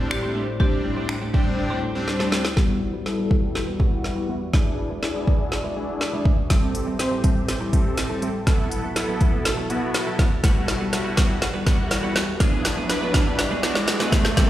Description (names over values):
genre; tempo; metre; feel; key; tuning
dance-pop; 122 BPM; 4/4; straight; E minor; A4 = 439 Hz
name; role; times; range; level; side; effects
big bright polysynth; accompaniment; 0.0-14.5 s; G3 to C5; -27 LUFS; left 1 dB; lush chorus, sidechain pumping, low-pass filter
sweeping resonant pad; sustained chords; 0.0-14.5 s; D2 to D5; -31 LUFS; left 1 dB; chorus, phaser, sidechain pumping, low-pass filter
twelve-string electric guitar; riff; 0.0-14.5 s; F#3 to C5; -29 LUFS; right 2 dB; lush chorus, low-pass filter
marimba with hard mallets; melody; 0.1-2.0 s; G4; -32 LUFS; left 2 dB; tape echo
deep house drum kit; drums; 0.1-14.5 s; finger snaps, hi-hat, kick drum, snare drum; -21 LUFS; equal; none
riser; sound effects; 11.4-14.5 s; none; -30 LUFS; right 1 dB; none
room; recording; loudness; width
moderate recital hall reverb, RT60 1.6 s; played on a big sound system in a bare room, stone room reverb; -20 LUFS; side -14 dB against mid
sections
0.0-2.6 A section; 2.6-14.5 B section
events
drum fill 2.1-2.6, 2.6-14.5; build-up 2.6-14.5; filter sweep 2.6-14.5; riser 11.4-14.5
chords
0.0 D7sus4; 2.6 Emadd9; 4.5 E7; 6.5 Am7; 8.5 B7sus4; 10.4 Emadd9; 12.4 E7